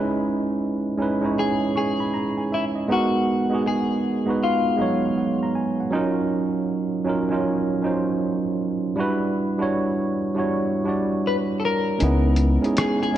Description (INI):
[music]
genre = lo-fi hip hop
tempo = 79 BPM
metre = 4/4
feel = swing 64% on 16ths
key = C# dorian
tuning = A4 = 439 Hz
[part]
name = tine electric piano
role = accompaniment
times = 0.0-13.2 s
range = F#3 to C#6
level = -21 LUFS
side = right 2 dB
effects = none
[part]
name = clean electric guitar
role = melody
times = 1.4-5.5, 11.3-13.2 s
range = E4 to B4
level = -26 LUFS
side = left 3 dB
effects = lush chorus
[part]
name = deep dub fingered electric bass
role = bass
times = 12.0-12.6 s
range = C#2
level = -18 LUFS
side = left 1 dB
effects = none
[part]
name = lo-fi sampler-style drum kit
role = drums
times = 12.0-13.1 s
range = hi-hat, rim click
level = -27 LUFS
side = left 1 dB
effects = vintage 12-bit sampler grit
[sound]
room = moderate scoring stage reverb, RT60 1.9 s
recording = dark, warm production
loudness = -20 LUFS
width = side -12 dB against mid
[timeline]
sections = 0.0-12.0 A section; 12.0-13.2 B section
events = kick muted 12.0-13.2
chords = 0.0 C#m9; 2.9 G#m9; 5.9 D#m9; 9.0 Em9; 12.0 C#m9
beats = 0.61 1.37 2.13 | 2.89 3.65 4.41 5.17 | 5.93 6.69 7.45 8.21 | 8.97 9.72 10.48 11.24 | 12.00 12.76